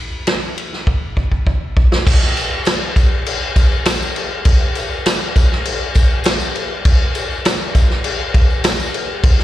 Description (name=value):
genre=rock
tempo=100 BPM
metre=4/4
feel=straight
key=none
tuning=none
part: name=vintage drum kit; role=drums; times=0.3-9.4 s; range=crash cymbal, kick drum, ride cymbal, snare drum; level=-14 LUFS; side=equal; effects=none
part: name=tambourine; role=percussion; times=2.4-9.4 s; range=none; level=-32 LUFS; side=left 1 dB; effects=none
room=studio reverb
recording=live gig heard through the venue's PA, recital hall reverb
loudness=-14 LUFS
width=side -14 dB against mid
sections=0.0-2.1 A section; 2.1-9.4 B section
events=drum fill 0.9-2.1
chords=none